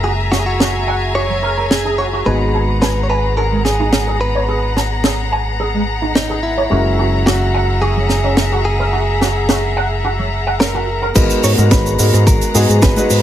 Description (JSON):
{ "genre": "nu-disco, nu disco", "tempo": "108 BPM", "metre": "4/4", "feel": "straight", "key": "G# minor", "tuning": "A4 = 440 Hz", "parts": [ { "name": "direct-recorded clean electric guitar", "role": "melody", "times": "0.0-13.2 s", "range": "D#4 to C#5", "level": "-21 LUFS", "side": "right 1 dB", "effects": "tape echo" }, { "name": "warm concert grand piano", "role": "accompaniment", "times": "0.0-13.2 s", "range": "G#3 to B4", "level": "-22 LUFS", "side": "left 1 dB", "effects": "low-pass filter" }, { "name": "rich studio string section", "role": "sustained chords", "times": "0.0-13.2 s", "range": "B3 to A#5", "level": "-22 LUFS", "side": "left 2 dB", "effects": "sidechain pumping" }, { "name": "electric guitar with an envelope filter", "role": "riff", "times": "0.0-11.1 s", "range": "F#3 to G#5", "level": "-22 LUFS", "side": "right 2 dB", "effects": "ensemble chorus, low-pass filter" }, { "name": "fingered electric bass with an envelope filter", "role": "bass", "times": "0.0-13.2 s", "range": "F#1 to G#2", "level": "-18 LUFS", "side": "equal", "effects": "none" }, { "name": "tight funk drum kit", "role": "drums", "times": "0.3-13.2 s", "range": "crash cymbal, hi-hat, rim click, shaker, snare drum", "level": "-17 LUFS", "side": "right 1 dB", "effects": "none" }, { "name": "electronic kick drum", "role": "drums", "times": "11.2-12.9 s", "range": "none", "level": "-14 LUFS", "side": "equal", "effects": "none" } ], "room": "light reverb, small room reverb", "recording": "none", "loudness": "-13 LUFS", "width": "side -11 dB against mid", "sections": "0.0-11.2 A section; 11.2-13.2 B section", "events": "filter sweep on grand piano 0.0-11.2; drop 11.2-13.2", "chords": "0.0 F#9; 2.3 G#m9; 6.7 F#9; 11.2 G#m9", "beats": "| 0.04 0.60 1.16 1.71 | 2.27 2.82 3.38 3.93 | 4.49 5.04 5.60 6.16 | 6.71 7.27 7.82 8.38 | 8.93 9.49 10.04 10.60 | 11.15 11.71 12.27 12.82" }